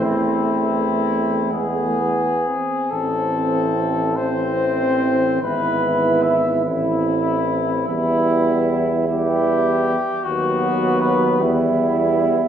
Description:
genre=classical, hymn-like piece for brass band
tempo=40-53 BPM (dotted quarters)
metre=6/8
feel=rubato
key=A minor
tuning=A4 = 440 Hz
part: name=mellow cornet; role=melody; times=0.0-11.4 s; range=E4 to E5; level=-22 LUFS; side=left 4 dB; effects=none
part: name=warm flugelhorn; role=second line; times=0.0-12.5 s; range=B3 to E4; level=-22 LUFS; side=right 3 dB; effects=none
part: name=clear trombone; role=accompaniment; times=0.0-12.5 s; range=E3 to G3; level=-26 LUFS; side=right 3 dB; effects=none
part: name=warm euphonium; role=accompaniment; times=0.0-12.5 s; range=G#3 to C4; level=-24 LUFS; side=left 1 dB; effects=none
part: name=clear tuba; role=bass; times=0.0-12.5 s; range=G#1 to E2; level=-25 LUFS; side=right 1 dB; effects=none
room=wet scoring stage reverb, RT60 1.6 s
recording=recorded in a church or concert hall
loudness=-17 LUFS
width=side -9 dB against mid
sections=0.0-2.9 A section; 2.9-12.5 B section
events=none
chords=0.0 Am/E; 1.5 E; 2.9 Am; 5.4 E/G#; 6.7 Am; 7.9 Em; 10.3 B/D#; 11.4 Em

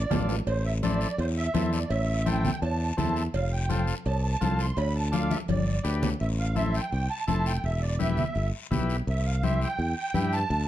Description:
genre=latin, cumbia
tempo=167 BPM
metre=4/4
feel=straight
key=A minor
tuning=A4 = 439 Hz
part: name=musette accordion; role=melody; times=0.0-10.7 s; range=C5 to C6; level=-32 LUFS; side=right 3 dB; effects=none
part: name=modern bright fingered electric bass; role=bass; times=0.0-10.7 s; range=E1 to G2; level=-27 LUFS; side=equal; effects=none
part: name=overdriven combo organ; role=accompaniment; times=0.1-10.4 s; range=C4 to C5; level=-34 LUFS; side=left 3 dB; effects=none
part: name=congas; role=percussion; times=0.1-10.7 s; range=none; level=-31 LUFS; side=left 2 dB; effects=none
part: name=cowbell and timbales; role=percussion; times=0.1-6.0 s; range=none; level=-36 LUFS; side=right 5 dB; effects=none
part: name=guiro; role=percussion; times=0.1-10.7 s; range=none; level=-42 LUFS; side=left 6 dB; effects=none
room=light reverb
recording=dark, warm production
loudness=-25 LUFS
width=side -12 dB against mid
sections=0.0-6.2 A section; 6.2-10.7 B section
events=drum fill 0.0-0.5, 5.3-6.2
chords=0.5 Am; 3.3 F; 4.8 Dm; 5.5 G; 6.2 Am; 7.6 Em; 9.1 C

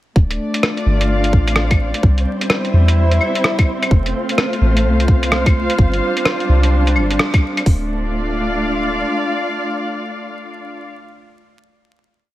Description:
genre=future garage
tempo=128 BPM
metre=4/4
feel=swing 62% on 16ths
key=D minor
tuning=A4 = 440 Hz
part: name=muted chamber string section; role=sustained chords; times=0.2-11.0 s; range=G3 to F5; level=-20 LUFS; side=equal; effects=sidechain pumping
part: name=soft 808-style bass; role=bass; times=0.2-9.0 s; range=D1 to E2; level=-16 LUFS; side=equal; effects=sidechain pumping
part: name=garage drum kit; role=drums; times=0.2-7.8 s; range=hi-hat, kick drum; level=-12 LUFS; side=equal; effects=none
part: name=flickering grainy texture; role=texture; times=0.9-7.7 s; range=C4 to C5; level=-28 LUFS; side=right 1 dB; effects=built-in reverb
part: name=lo-fi sampler-style drum kit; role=drums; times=0.3-7.6 s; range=claves, hi-hat, rim click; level=-19 LUFS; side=equal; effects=none
room=light reverb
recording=vinyl crackle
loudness=-14 LUFS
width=side -15 dB against mid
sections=0.2-7.7 groove; 7.7-11.4 final chord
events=band accent 7.2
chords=0.2 Dm; 2.0 C; 3.9 F; 5.8 G7sus4; 7.7 Dm

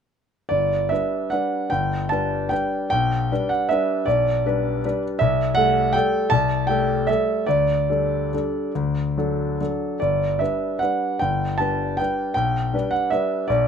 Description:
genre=classical, piano waltz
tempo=135-172 BPM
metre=3/4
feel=rubato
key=G major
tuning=A4 = 435 Hz
part: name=clear grand piano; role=solo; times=0.5-13.7 s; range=G1 to A5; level=-19 LUFS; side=equal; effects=none
room=light reverb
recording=none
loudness=-20 LUFS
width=side -7 dB against mid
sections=0.5-13.7 A section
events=none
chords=0.5 G; 2.9 G/B; 5.2 Am7/C; 7.5 Dsus4; 8.7 D; 10.0 G; 12.4 G/B

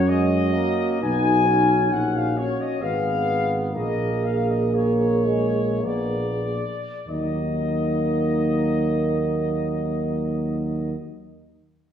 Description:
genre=classical, hymn-like piece for brass band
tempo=46-69 BPM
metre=3/4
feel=rubato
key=Eb minor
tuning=A4 = 440 Hz
part: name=warm trumpet section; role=melody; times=0.0-10.9 s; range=Db5 to Ab5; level=-27 LUFS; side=left 7 dB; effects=none
part: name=mellow French horn section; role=second line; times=0.0-11.0 s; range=Eb4 to Ab4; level=-28 LUFS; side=right 5 dB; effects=none
part: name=clear trombone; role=accompaniment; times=0.0-10.9 s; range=Gb3 to Db4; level=-30 LUFS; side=right 1 dB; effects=none
part: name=warm euphonium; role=accompaniment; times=0.0-10.9 s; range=Bb3 to D#4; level=-27 LUFS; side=right 1 dB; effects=none
part: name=mellow tuba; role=bass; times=0.0-10.9 s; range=Ab1 to Gb2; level=-25 LUFS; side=equal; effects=none
room=wet recital hall reverb, RT60 1.3 s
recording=heard from further back in the room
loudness=-20 LUFS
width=side -8 dB against mid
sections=0.0-7.1 A section; 7.1-10.6 B section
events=slowing down 0.0-7.1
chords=0.0 Gb; 1.0 B; 2.8 Fdim/Ab; 3.7 Bbm7; 5.8 Bb7b9; 7.1 Ebm

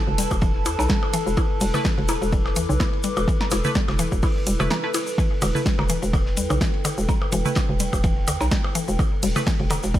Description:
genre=minimal techno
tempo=126 BPM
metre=4/4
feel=swing 55% on 16ths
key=E minor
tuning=A4 = 440 Hz
part: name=warbly tape-like pad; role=texture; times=0.0-10.0 s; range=E4 to D6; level=-29 LUFS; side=left 1 dB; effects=chorus, built-in reverb, sidechain pumping
part: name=hollow knocking FM bass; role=bass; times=0.1-10.0 s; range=E1 to E2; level=-25 LUFS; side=equal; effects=sidechain pumping
part: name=electronic toms and percussion blips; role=percussion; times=0.1-9.8 s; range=none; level=-29 LUFS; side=right 1 dB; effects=studio reverb, tape echo
part: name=mallet-like synth pluck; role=riff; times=0.2-10.0 s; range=D3 to E4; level=-29 LUFS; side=left 2 dB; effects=chorus, sidechain pumping, ping-pong delay
part: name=punchy analog drum machine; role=drums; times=0.2-9.8 s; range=hi-hat, snare drum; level=-29 LUFS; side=equal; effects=overdrive, studio reverb
part: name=warm soul drum kit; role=drums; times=0.2-10.0 s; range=hi-hat, ride cymbal, snare drum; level=-38 LUFS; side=left 1 dB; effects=high-pass filter on cymbals, studio reverb, high-pass filter on hats, high-pass filter on snare, high-pass filter on room
part: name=tube shaker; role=percussion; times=0.2-10.0 s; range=none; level=-34 LUFS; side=left 3 dB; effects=none
part: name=electronic kick drum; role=drums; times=0.3-10.0 s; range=none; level=-22 LUFS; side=equal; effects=overdrive, studio reverb
part: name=wavetable chord stab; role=stabs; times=1.7-9.4 s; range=A3 to B4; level=-31 LUFS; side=right 2 dB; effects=tape echo
room=studio ambience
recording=none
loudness=-19 LUFS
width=side -13 dB against mid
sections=0.0-10.0 A section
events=break 4.7-5.2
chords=0.0 Esus4

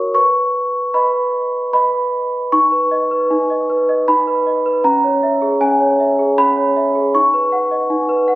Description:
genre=classical, lullaby for celesta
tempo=78 BPM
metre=3/4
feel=straight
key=B major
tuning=A4 = 439 Hz
part: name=large celesta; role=solo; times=0.0-8.4 s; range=C#4 to C#6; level=-13 LUFS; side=equal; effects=none
room=light reverb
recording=recorded on a phone in the room, studio reverb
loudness=-13 LUFS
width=side -17 dB against mid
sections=0.0-2.5 A section; 2.5-8.4 B section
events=none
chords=0.1 B; 2.5 B/D#; 4.8 C#m; 7.1 B/D#

